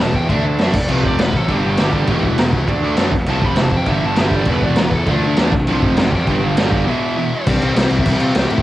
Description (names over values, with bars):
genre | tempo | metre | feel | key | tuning
punk rock | 201 BPM | 4/4 | straight | G major | A4 = 440 Hz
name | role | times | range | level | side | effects
high-gain lead guitar | melody | 0.0-8.6 s | C4 to B5 | -24 LUFS | equal | distortion, analog delay
biting overdriven guitar | riff | 0.0-7.3 s | E2 to D4 | -24 LUFS | right 7 dB | cassette tape
distorted electric guitar | riff | 0.0-8.6 s | E2 to D4 | -23 LUFS | equal | overdrive, cassette tape
sludgy distorted guitar | riff | 0.0-8.6 s | E2 to D4 | -24 LUFS | left 5 dB | overdrive, cassette tape
fuzz picked electric bass | bass | 0.0-8.6 s | E1 to C3 | -20 LUFS | equal | overdrive
raw garage drum kit | drums | 0.1-8.6 s | crash cymbal, kick drum, snare drum | -18 LUFS | equal | none
room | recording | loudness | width
little or no reverb | home recording on cassette | -14 LUFS | side -15 dB against mid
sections
0.0-7.5 A section; 7.5-8.6 B section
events
lead electric guitar solo 0.0-7.5; break 6.9-7.5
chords
0.3 D; 0.7 F; 1.5 G5; 2.1 E5; 2.7 D; 3.1 F5; 3.9 G5; 4.5 E5; 5.1 D5; 5.5 F5; 6.3 G; 6.9 E5; 7.5 C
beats
| 0.29 0.59 0.89 1.19 | 1.49 1.79 2.08 2.38 | 2.68 2.98 3.28 3.58 | 3.88 4.18 4.48 4.78 | 5.07 5.37 5.67 5.97 | 6.27 6.57 6.87 7.17 | 7.47 7.76 8.06 8.36